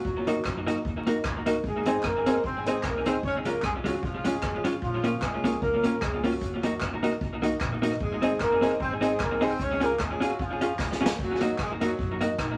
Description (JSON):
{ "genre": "ska", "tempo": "151 BPM", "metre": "4/4", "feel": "swing 56% on 8ths", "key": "Eb dorian", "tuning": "A4 = 440 Hz", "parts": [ { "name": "mellow horn section", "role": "melody", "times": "0.0-12.6 s", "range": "Eb3 to Db5", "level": "-32 LUFS", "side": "equal", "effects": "none" }, { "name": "upright bass", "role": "bass", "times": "0.0-12.6 s", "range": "Gb1 to Gb2", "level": "-40 LUFS", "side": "equal", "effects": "none" }, { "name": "street-band drum kit", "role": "drums", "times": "0.0-12.5 s", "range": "hi-hat, kick drum, rim click, snare drum", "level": "-36 LUFS", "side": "equal", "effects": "tape echo" }, { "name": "vintage hollow-body jazz guitar", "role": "accompaniment", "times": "0.3-12.3 s", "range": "Ab3 to Ab4", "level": "-31 LUFS", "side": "equal", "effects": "tape echo" }, { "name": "tack piano", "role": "stabs", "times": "0.3-12.3 s", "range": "Bb3 to F5", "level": "-35 LUFS", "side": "equal", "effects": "none" }, { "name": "group handclap", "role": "percussion", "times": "0.4-12.5 s", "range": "none", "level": "-38 LUFS", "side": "equal", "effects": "none" } ], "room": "moderate club reverb, RT60 0.5 s", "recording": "vinyl crackle", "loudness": "-27 LUFS", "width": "mono", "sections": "0.0-11.2 A section; 11.2-12.6 B section", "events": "drum fill 10.8-11.2", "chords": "0.1 Ebm; 1.6 Ab; 3.2 Db; 4.8 Bbm; 6.4 Ebm; 8.0 Ab; 9.6 Db; 11.2 Ebm", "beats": "| 0.05 0.45 0.85 1.25 | 1.64 2.04 2.44 2.84 | 3.23 3.63 4.03 4.43 | 4.82 5.22 5.62 6.02 | 6.42 6.81 7.21 7.61 | 8.01 8.40 8.80 9.20 | 9.60 9.99 10.39 10.79 | 11.19 11.59 11.98 12.38" }